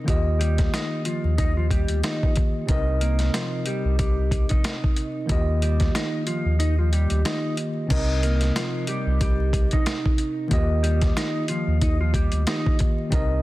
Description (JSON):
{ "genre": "hip hop, boom-bap hip-hop", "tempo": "92 BPM", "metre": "4/4", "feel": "swing 56% on 16ths", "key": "Eb major", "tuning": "A4 = 440 Hz", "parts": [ { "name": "mellow electric guitar", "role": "melody", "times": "0.0-12.8 s", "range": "F3 to Eb5", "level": "-30 LUFS", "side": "right 1 dB", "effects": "lush chorus, high-pass filter, low-pass filter" }, { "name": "tine electric piano", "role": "accompaniment", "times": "0.0-13.4 s", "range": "C3 to Eb5", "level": "-28 LUFS", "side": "equal", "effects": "medium stereo tremolo, high-pass filter, low-pass filter" }, { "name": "sub bass with octave", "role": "bass", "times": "0.1-13.4 s", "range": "Bb1 to Eb2", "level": "-22 LUFS", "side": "equal", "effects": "none" }, { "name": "boom bap sampler-style drum kit", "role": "drums", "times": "0.1-13.3 s", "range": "crash cymbal, hi-hat, kick drum, snare drum", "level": "-24 LUFS", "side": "equal", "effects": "none" } ], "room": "digital ambience", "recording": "dense, heavily limited modern master, vinyl crackle", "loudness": "-20 LUFS", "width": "side -17 dB against mid", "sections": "0.0-7.9 A section; 7.9-13.4 B section", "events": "kick muted 6.6-7.9", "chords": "0.1 Eb; 2.7 Cm7; 5.3 Eb; 7.9 Cm7; 10.5 Eb" }